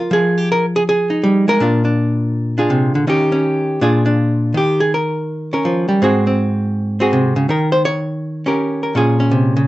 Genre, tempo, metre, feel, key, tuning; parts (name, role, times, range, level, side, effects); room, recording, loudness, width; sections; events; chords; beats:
solo jazz; 163 BPM; 4/4; swing 65% on 8ths; Eb mixolydian; A4 = 440 Hz
archtop guitar, miked and amplified; solo; 0.0-9.7 s; Ab2 to Db5; -14 LUFS; equal
moderate club reverb, RT60 0.5 s; dark, warm production, nothing above 7.9 kHz; -14 LUFS; side -16 dB against mid
0.0-4.5 A section; 4.5-9.7 B section
hollow-body jazz guitar solo 4.5-9.7
0.0 Fm7; 1.6 Bb7; 3.1 Eb7; 3.8 Bb7; 4.5 Eb7; 6.0 Ab7; 7.5 Eb7; 8.9 Bbm7
| 0.11 0.48 0.85 1.22 | 1.59 1.95 2.32 2.69 | 3.06 3.43 3.80 4.17 | 4.53 4.90 5.27 5.64 | 6.01 6.37 6.74 7.11 | 7.48 7.85 8.21 8.58 | 8.95 9.32